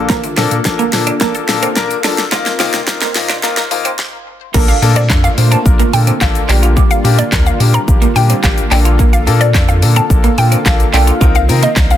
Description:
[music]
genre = dance-pop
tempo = 108 BPM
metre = 4/4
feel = straight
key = Bb major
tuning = A4 = 441 Hz
[part]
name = warm grand piano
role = accompaniment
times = 0.0-11.9 s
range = Bb3 to C5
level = -18 LUFS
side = left 7 dB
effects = sidechain pumping
[part]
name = warm analog pad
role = sustained chords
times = 0.0-12.0 s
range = D3 to A4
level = -23 LUFS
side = equal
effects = chorus, sidechain pumping
[part]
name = round analog bass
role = bass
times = 0.0-11.9 s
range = A1 to C3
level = -13 LUFS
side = equal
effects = sidechain pumping
[part]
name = resonant blip pluck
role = arpeggios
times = 0.1-3.9 s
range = F3 to C5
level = -26 LUFS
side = left 1 dB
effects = phaser, sidechain pumping, ping-pong delay
[part]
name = twelve-string electric guitar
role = riff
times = 0.1-11.9 s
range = G3 to F4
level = -21 LUFS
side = right 9 dB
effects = analog chorus
[part]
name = pop drum kit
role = drums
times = 0.1-12.0 s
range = crash cymbal, handclaps, hi-hat, kick drum, shaker, snare drum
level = -14 LUFS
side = equal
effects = none
[part]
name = egg shaker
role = percussion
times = 0.1-12.0 s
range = none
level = -31 LUFS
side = left 16 dB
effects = none
[part]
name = hollow square pluck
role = melody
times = 4.7-12.0 s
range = D5 to Bb5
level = -18 LUFS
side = equal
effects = chorus, sidechain pumping, ping-pong delay
[sound]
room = digital ambience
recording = dense, heavily limited modern master, high-pass filter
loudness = -10 LUFS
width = side -11 dB against mid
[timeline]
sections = 0.0-4.5 A section; 4.5-12.0 B section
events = build-up 0.0-4.5; drum fill 0.0-4.0; filter sweep 0.0-4.5; stop 4.0-4.5; drop 4.5-12.0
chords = 0.0 Bbmaj7; 2.3 F7sus4/C; 4.5 Bbmaj7; 6.5 Gm7/Bb; 8.7 Bbmaj7; 11.2 F7sus4/C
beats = | 0.10 0.66 1.21 1.77 | 2.32 2.88 3.43 3.99 | 4.54 5.10 5.66 6.21 | 6.77 7.32 7.88 8.43 | 8.99 9.54 10.10 10.65 | 11.21 11.77

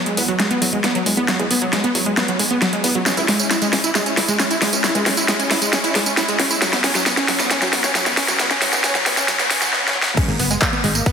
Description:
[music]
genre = uplifting trance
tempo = 135 BPM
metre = 4/4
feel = straight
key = unclear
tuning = A4 = 440 Hz
[part]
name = wide unison pluck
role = arpeggios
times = 0.1-11.1 s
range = F#3 to E4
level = -20 LUFS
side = right 1 dB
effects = vintage 12-bit sampler grit, sidechain pumping, tape echo
[part]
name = big-room dance drum kit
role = drums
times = 0.1-11.1 s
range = crash cymbal, handclaps, hi-hat, ride cymbal, snare drum, tambourine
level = -18 LUFS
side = equal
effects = overdrive, high-pass filter on snare, high-pass filter on hats, high-pass filter on perc, high-pass filter on cymbals
[part]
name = solid FM bass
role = bass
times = 0.2-11.0 s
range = E1 to E2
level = -28 LUFS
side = left 1 dB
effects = sidechain pumping, high-pass filter
[part]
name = electronic kick drum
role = drums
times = 10.2-11.1 s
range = none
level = -19 LUFS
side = left 1 dB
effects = overdrive
[sound]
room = wet lush hall reverb, RT60 1.9 s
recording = dense, heavily limited modern master, high-pass filter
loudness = -15 LUFS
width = side -7 dB against mid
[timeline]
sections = 0.0-10.2 A section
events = build-up 0.0-10.2; drum fill 0.0-9.7, 9.7-10.2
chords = 0.0 E; 3.1 C#m; 6.6 F#sus4; 10.2 G#madd9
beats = 0.40 0.84 | 1.28 1.73 2.17 2.62 | 3.06 3.51 3.95 4.40 | 4.84 5.29 5.73 6.17 | 6.62 7.06 7.51 7.95 | 8.40 8.84 9.29 9.73 | 10.17 10.62 11.06

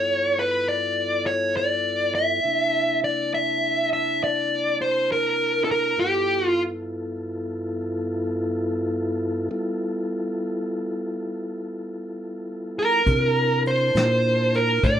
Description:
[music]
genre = slow blues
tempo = 68 BPM (dotted quarters)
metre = 12/8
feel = straight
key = G mixolydian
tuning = A4 = 440 Hz
[part]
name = dark smooth lead guitar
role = melody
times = 0.0-6.6, 12.8-15.0 s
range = G4 to E5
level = -20 LUFS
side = equal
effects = overdrive
[part]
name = mellow tonewheel organ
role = sustained chords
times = 0.0-15.0 s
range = G2 to A5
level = -28 LUFS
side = left 1 dB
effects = slow rotary speaker
[part]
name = fingered electric bass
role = bass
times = 13.1-15.0 s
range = A2 to C3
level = -24 LUFS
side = equal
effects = none
[part]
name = vintage brush drum kit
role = drums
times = 13.1-15.0 s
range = hi-hat, kick drum, snare drum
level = -23 LUFS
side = equal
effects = none
[sound]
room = wet studio reverb, RT60 0.5 s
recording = rough home demo mix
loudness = -21 LUFS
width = side -9 dB against mid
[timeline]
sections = 0.0-15.0 A section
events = none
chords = 0.0 G13; 2.4 C13; 6.0 G13; 13.1 C13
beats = 0.67 1.56 | 2.44 3.33 4.22 5.10 | 5.99 6.88 7.76 8.65 | 9.53 10.42 11.30 12.19 | 13.07 13.95 14.84

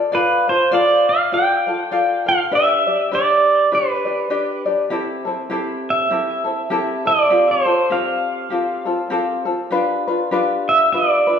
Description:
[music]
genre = hawaiian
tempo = 100 BPM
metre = 4/4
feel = swing 59% on 8ths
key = unclear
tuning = A4 = 442 Hz
[part]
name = tenor ukulele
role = accompaniment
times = 0.0-11.4 s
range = C4 to F5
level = -20 LUFS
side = left 3 dB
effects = none
[part]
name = pedal steel guitar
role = melody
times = 0.1-11.4 s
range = B4 to G5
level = -16 LUFS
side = right 2 dB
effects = digital delay
[sound]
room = wet large studio reverb, RT60 1.2 s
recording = band playing live in one room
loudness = -16 LUFS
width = side -7 dB against mid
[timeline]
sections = 0.0-11.4 A section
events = none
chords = 0.1 Dm; 2.5 G; 4.9 C6; 7.3 Fadd9; 9.7 G7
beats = | 0.12 0.71 1.31 1.91 | 2.51 3.11 3.70 4.30 | 4.90 5.50 6.10 6.70 | 7.30 7.90 8.50 9.10 | 9.70 10.31 10.91

